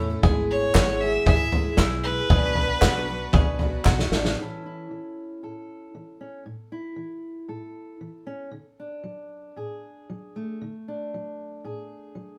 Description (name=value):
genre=indie folk with a building arrangement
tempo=116 BPM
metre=4/4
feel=straight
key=A major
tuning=A4 = 441 Hz
part: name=fingerpicked steel-string acoustic guitar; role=accompaniment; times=0.0-12.4 s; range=F#2 to A4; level=-36 LUFS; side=equal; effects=none
part: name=picked twelve-string acoustic guitar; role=accompaniment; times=0.0-4.4 s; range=B2 to A4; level=-33 LUFS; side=equal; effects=none
part: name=bluegrass banjo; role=arpeggios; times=0.0-4.4 s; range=E4 to G#4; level=-34 LUFS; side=equal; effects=none
part: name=upright bass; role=bass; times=0.0-4.3 s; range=G#1 to E2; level=-34 LUFS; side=equal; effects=none
part: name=loose indie drum kit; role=drums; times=0.2-4.4 s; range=kick drum, snare drum, toms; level=-23 LUFS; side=equal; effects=none
part: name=rich fiddle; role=melody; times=0.5-3.8 s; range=B4 to E5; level=-29 LUFS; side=equal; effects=none
part: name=group handclap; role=percussion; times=0.7-4.0 s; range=none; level=-32 LUFS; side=equal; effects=none
room=moderate studio reverb, RT60 0.5 s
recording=band playing live in one room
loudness=-23 LUFS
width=mono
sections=0.0-4.4 A section; 4.4-12.4 B section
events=drum fill 3.9-4.4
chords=0.2 E/G#; 2.3 Bm; 4.4 A; 8.5 D